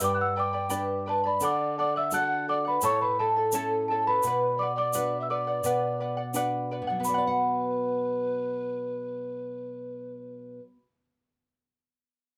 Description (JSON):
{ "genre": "andean folk, Andean ensemble", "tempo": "85 BPM", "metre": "2/4", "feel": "straight", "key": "B minor", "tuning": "A4 = 440 Hz", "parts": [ { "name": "large celesta", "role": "melody", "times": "0.0-10.8 s", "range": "A5 to F#6", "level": "-31 LUFS", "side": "equal", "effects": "none" }, { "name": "mellow hollow polished pan flute", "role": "second line", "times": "0.0-10.6 s", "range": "A4 to G5", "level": "-34 LUFS", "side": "equal", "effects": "none" }, { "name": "charango", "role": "accompaniment", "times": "0.0-11.0 s", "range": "E4 to B5", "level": "-34 LUFS", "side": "equal", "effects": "none" }, { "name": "nylon-string guitar", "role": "accompaniment", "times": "0.0-11.0 s", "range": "G2 to F#5", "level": "-35 LUFS", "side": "equal", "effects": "none" }, { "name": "egg shaker", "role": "percussion", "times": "0.0-7.4 s", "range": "none", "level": "-37 LUFS", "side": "equal", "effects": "none" } ], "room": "wet studio ambience, RT60 0.5 s", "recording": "none", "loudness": "-28 LUFS", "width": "mono", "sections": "0.0-7.0 A section; 7.0-9.9 B section", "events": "none", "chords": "0.0 G; 1.4 D; 2.8 A; 4.2 Bm" }